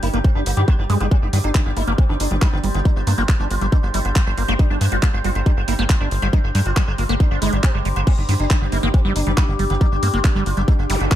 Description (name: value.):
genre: psychedelic trance.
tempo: 138 BPM.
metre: 4/4.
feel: straight.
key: G minor.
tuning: A4 = 440 Hz.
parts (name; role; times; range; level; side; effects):
sitar; melody; 0.0-11.2 s; D3 to F4; -27 LUFS; equal; phaser, sidechain pumping, tape echo.
overtone-sweeping drone; sustained chords; 0.0-11.2 s; G3 to C5; -29 LUFS; equal; chorus, built-in reverb, sidechain pumping.
liquid acid bass; riff; 0.0-11.2 s; G3 to G4; -26 LUFS; moving between left 2 dB and right 4 dB; phaser, auto-pan, sidechain pumping, tape echo.
tight sequencer bass; bass; 0.0-11.1 s; G1 to G2; -20 LUFS; equal; none.
garage drum kit; drums; 0.0-11.2 s; crash cymbal, handclaps, hi-hat; -27 LUFS; right 1 dB; none.
granular cloud pad; texture; 1.0-11.2 s; D4 to Bb5; -35 LUFS; right 1 dB; none.
electronic kick drum; drums; 0.2-11.2 s; none; -16 LUFS; equal; none.
zap; sound effects; 10.9-11.0 s; none; -25 LUFS; equal; none.
room: little or no reverb.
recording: dark, warm production.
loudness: -16 LUFS.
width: side -12 dB against mid.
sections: 0.0-11.2 A section.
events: filter sweep on acid bass 0.0-11.2.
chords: 0.0 G5.